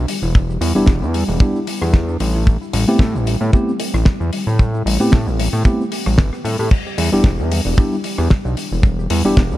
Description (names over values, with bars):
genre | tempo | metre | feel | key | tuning
nu-disco, nu disco | 113 BPM | 4/4 | swing 54% on 16ths | A minor | A4 = 442 Hz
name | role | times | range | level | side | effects
soft round pluck | arpeggios | 0.0-9.6 s | G3 to G4 | -26 LUFS | left 2 dB | analog chorus, sidechain pumping, ping-pong delay
fat analog bass | bass | 0.0-9.6 s | E1 to A2 | -18 LUFS | equal | none
damped 70s drum kit | drums | 0.1-9.6 s | crash cymbal, hi-hat, rim click, shaker, snare drum | -24 LUFS | left 2 dB | none
kick drum | drums | 0.3-9.5 s | none | -12 LUFS | equal | none
mellow tine electric piano | accompaniment | 0.8-9.4 s | G3 to G4 | -21 LUFS | equal | vintage 12-bit sampler grit, sidechain pumping, tape echo
room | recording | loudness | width
light reverb, small room ambience | none | -14 LUFS | side -15 dB against mid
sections
0.0-9.6 A section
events
none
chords
0.0 Em7; 2.5 Am9; 6.7 Em7